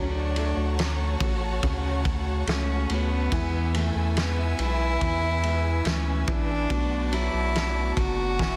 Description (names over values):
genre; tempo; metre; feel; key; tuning
pop ballad; 71 BPM; 4/4; straight; unclear; A4 = 440 Hz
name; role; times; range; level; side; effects
rich cello; melody; 0.0-8.6 s; A3 to F#4; -32 LUFS; equal; none
warm studio violin section; second line; 0.0-8.6 s; E4 to B5; -39 LUFS; equal; delay
clear upright piano; accompaniment; 0.0-8.6 s; B2 to A3; -36 LUFS; equal; none
rich studio string section; sustained chords; 0.0-8.6 s; A3 to E6; -42 LUFS; equal; none
fingerpicked steel-string acoustic guitar; arpeggios; 0.0-8.6 s; B2 to B4; -41 LUFS; equal; none
saturated sub bass; bass; 0.0-8.6 s; E1 to E2; -29 LUFS; equal; none
loose indie drum kit; drums; 0.4-8.6 s; kick drum, ride cymbal, snare drum; -32 LUFS; equal; none
room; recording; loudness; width
studio ambience; dense, heavily limited modern master; -26 LUFS; mono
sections
0.0-8.6 A section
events
drum fill 8.4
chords
0.0 Dmaj7; 3.3 E; 6.7 Bm7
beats
0.78 1.63 2.47 | 3.32 4.16 5.01 5.85 | 6.70 7.54 8.39